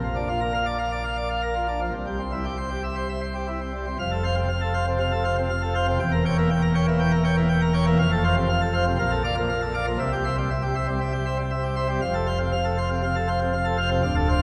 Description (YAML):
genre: classical, organ toccata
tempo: 119 BPM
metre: 4/4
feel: straight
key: F major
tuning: A4 = 442 Hz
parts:
  - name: pipe organ, plenum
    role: solo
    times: 0.0-14.4 s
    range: D1 to G5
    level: -24 LUFS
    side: equal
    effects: none
room: wet church reverb, RT60 3.3 s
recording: none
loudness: -24 LUFS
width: mono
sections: 0.0-4.0 A section; 4.0-14.4 B section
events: none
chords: 0.0 Bb; 1.9 C; 4.0 F; 6.0 Edim7; 8.0 F; 9.0 Bbmaj7; 10.0 C; 12.0 F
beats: 0.41 0.92 1.42 | 1.94 2.45 2.97 3.48 | 3.99 4.50 5.00 5.50 | 6.00 6.50 7.00 7.50 | 7.99 8.49 8.99 9.49 | 9.99 10.50 11.01 11.52 | 12.03 12.53 13.04 13.54 | 14.04